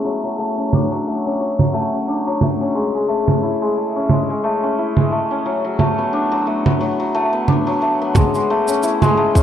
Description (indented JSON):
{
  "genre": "folktronica",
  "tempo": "89 BPM",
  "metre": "4/4",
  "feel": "swing 56% on 16ths",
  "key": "A major",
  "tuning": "A4 = 440 Hz",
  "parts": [
    { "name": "hammered dulcimer", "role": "arpeggios", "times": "0.0-9.4 s", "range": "F#3 to E4", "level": "-17 LUFS", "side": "left 2 dB", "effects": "low-pass filter, digital delay" },
    { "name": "congas and shaker", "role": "drums", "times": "0.7-9.4 s", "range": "none", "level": "-17 LUFS", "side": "right 2 dB", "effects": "none" },
    { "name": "electronic kick drum", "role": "drums", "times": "8.2-9.4 s", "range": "none", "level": "-13 LUFS", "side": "equal", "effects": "none" }
  ],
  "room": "light reverb, digital ambience",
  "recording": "low-pass filter",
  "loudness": "-16 LUFS",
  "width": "side -10 dB against mid",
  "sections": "0.0-8.2 A section; 8.2-9.4 B section",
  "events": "filter sweep on hammered dulcimer 0.0-8.2; filter sweep 0.0-8.2",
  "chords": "0.1 Dmaj7; 2.8 Amaj7; 5.5 Bm7; 8.2 Amaj7"
}